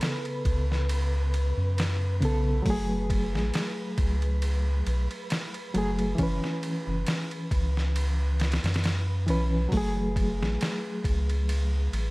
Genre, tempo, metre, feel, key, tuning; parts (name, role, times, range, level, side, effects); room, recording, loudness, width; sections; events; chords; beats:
trip hop; 68 BPM; 4/4; swing 55% on 16ths; F# minor; A4 = 441 Hz
barky reed electric piano; accompaniment; 0.0-12.1 s; C#3 to B4; -31 LUFS; equal; fast tremolo, harmonic tremolo, tape echo
boom bap sampler-style drum kit; drums; 0.0-12.1 s; hi-hat, kick drum, ride cymbal, snare drum; -31 LUFS; equal
wind-like tuned noise texture; texture; 0.0-12.1 s; B4; -41 LUFS; equal; built-in reverb
round analog bass; bass; 0.5-12.1 s; F#1 to F#2; -26 LUFS; equal
little or no reverb; vinyl crackle; -25 LUFS; side -22 dB against mid
0.0-12.1 A section
0.0 Aadd9; 2.7 F#madd9; 6.2 C#m7/F#; 9.7 F#madd9
0.01 0.89 1.77 | 2.66 3.54 4.42 5.30 | 6.18 7.07 7.95 8.83 | 9.71 10.60 11.48